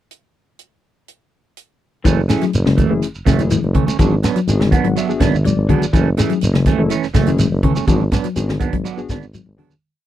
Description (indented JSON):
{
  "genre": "afrobeat",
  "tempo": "124 BPM",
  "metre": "4/4",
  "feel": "straight",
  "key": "F# minor",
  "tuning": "A4 = 435 Hz",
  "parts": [
    { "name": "tight funk drum kit", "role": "drums", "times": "0.1-9.7 s", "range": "hi-hat, kick drum, snare drum", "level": "-19 LUFS", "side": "equal", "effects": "none" },
    { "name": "semi-hollow electric guitar", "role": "arpeggios", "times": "2.0-9.7 s", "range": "C#3 to F#3", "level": "-20 LUFS", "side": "left 5 dB", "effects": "analog chorus" },
    { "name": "mellow tuba", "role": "bass", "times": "2.0-9.8 s", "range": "F#1 to G#1", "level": "-19 LUFS", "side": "equal", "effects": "none" },
    { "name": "electric guitar at the edge of break-up", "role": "stabs", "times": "2.1-9.7 s", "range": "E3 to D4", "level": "-20 LUFS", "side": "right 10 dB", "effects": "phaser" },
    { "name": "congas", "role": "percussion", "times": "2.1-9.8 s", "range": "none", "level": "-23 LUFS", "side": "equal", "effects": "none" },
    { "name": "shekere", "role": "percussion", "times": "2.1-9.8 s", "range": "none", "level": "-23 LUFS", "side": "right 1 dB", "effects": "none" },
    { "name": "reed electric piano", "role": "accompaniment", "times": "2.3-9.7 s", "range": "A3 to F#5", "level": "-23 LUFS", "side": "left 5 dB", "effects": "overdrive" }
  ],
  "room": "little or no reverb",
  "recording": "dry, close 1970s-style studio recording",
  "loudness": "-14 LUFS",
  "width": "side -12 dB against mid",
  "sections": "0.1-2.1 pickup bar; 2.1-9.8 groove",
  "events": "reed electric piano fill 4.5-5.9; fade-out 7.9-9.8; drum fill 9.5-9.8",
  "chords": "0.1 N.C.; 2.1 F#m7; 4.0 G#m7b5; 5.9 F#m7; 7.9 G#m7b5"
}